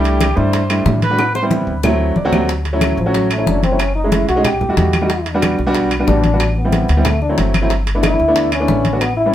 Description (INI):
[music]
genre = Afro-Cuban jazz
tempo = 184 BPM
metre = 4/4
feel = straight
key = D major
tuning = A4 = 440 Hz
[part]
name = breathy trumpet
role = melody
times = 0.0-1.4 s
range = G4 to C5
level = -21 LUFS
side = right 1 dB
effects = analog delay
[part]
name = clear upright piano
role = accompaniment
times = 0.0-9.3 s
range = F#3 to D5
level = -18 LUFS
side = right 1 dB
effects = none
[part]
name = upright bass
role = bass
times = 0.0-9.3 s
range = F#1 to A2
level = -19 LUFS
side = equal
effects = none
[part]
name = bongos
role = percussion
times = 0.0-9.2 s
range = none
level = -26 LUFS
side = left 4 dB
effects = none
[part]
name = congas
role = percussion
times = 0.0-9.3 s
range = none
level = -22 LUFS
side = left 1 dB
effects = none
[part]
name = timbales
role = percussion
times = 0.1-9.2 s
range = none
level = -25 LUFS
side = right 3 dB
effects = none
[part]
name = claves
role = percussion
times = 0.2-9.2 s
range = none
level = -27 LUFS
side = left 3 dB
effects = none
[part]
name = mellow trombone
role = second line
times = 3.0-9.3 s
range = F3 to G4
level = -19 LUFS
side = left 2 dB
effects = none
[sound]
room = moderate studio reverb, RT60 0.6 s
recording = heard from further back in the room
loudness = -13 LUFS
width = side -12 dB against mid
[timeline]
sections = 0.0-2.5 A section; 2.5-9.3 A section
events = trumpet solo 0.0-2.5; drum fill 1.2-2.5; upright piano fill 2.0-2.5; trombone solo 2.5-9.3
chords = 0.0 C69; 1.2 Am7; 1.8 D7; 2.5 Dmaj9; 3.8 F#m9; 4.4 B7b13; 5.1 Em7; 6.4 Am9; 7.1 D7; 7.7 G69